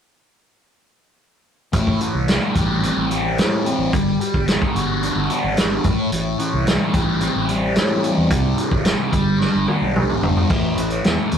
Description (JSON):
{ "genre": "psychedelic rock", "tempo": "110 BPM", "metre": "4/4", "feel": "straight", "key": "A dorian", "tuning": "A4 = 440 Hz", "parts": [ { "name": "thick fuzz guitar", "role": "riff", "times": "1.7-11.4 s", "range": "A2 to G4", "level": "-20 LUFS", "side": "equal", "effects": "distortion, phaser" }, { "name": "fingered electric bass", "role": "bass", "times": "1.7-11.4 s", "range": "F#1 to A2", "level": "-24 LUFS", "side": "equal", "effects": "none" }, { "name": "vintage drum kit", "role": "drums", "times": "1.7-11.4 s", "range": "crash cymbal, hi-hat, kick drum, snare drum, toms", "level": "-21 LUFS", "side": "equal", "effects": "none" } ], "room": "moderate studio reverb, RT60 0.6 s", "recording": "rough rehearsal-room recording, tube saturation", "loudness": "-17 LUFS", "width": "side -8 dB against mid", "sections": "1.7-10.5 A section", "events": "drum fill 9.4-10.5", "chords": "1.7 Am7; 3.9 Gmaj7; 5.8 Am7; 8.3 C; 9.1 G; 10.5 A5" }